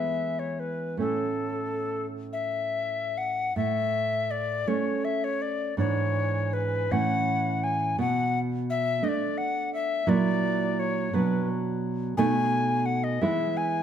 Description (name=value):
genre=romantic duo for recorder and classical guitar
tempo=44-59 BPM (dotted quarters)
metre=6/8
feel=rubato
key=A major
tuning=A4 = 439 Hz
part: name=alto recorder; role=melody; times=0.0-13.8 s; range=A4 to G#5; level=-28 LUFS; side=left 4 dB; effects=none
part: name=nylon-string guitar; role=accompaniment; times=0.0-13.8 s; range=G#2 to E4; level=-27 LUFS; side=right 3 dB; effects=none
room=moderate recital hall reverb, RT60 1.3 s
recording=faint mains hum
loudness=-25 LUFS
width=side -9 dB against mid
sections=0.0-3.6 A section; 3.6-13.8 B section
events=none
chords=0.0 E; 1.0 A; 5.8 E7/G#; 6.9 A; 8.0 Bm7; 10.1 F#7/A#; 11.1 Bm; 12.2 B7; 13.2 E